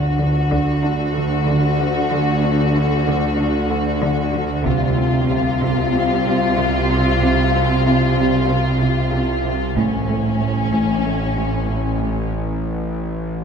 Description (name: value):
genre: cinematic, suspense film score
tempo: 94 BPM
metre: 4/4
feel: straight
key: unclear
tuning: A4 = 438 Hz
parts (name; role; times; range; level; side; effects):
- rich symphonic violin section; melody; 0.0-12.3 s; C#4 to F#4; -22 LUFS; left 4 dB; none
- rich symphonic cello section; riff; 0.0-12.2 s; A2 to D4; -23 LUFS; right 1 dB; none
- rich symphonic double bass section; bass; 0.0-12.3 s; A1 to D2; -23 LUFS; right 3 dB; none
- warm symphonic cello section; bass; 0.0-12.3 s; A2 to D3; -22 LUFS; right 2 dB; none
- bowed-like drone; drone; 0.0-13.4 s; A1 to D2; -25 LUFS; left 1 dB; built-in reverb
- taiko ensemble; drums; 0.5-0.8, 4.7-5.9, 9.8-11.0 s; none; -31 LUFS; equal; none
room: wet concert hall reverb, RT60 2.3 s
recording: none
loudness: -16 LUFS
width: side -6 dB against mid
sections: 0.0-13.4 A section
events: break 12.3-13.4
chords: 0.0 D; 4.7 Csus4; 9.8 A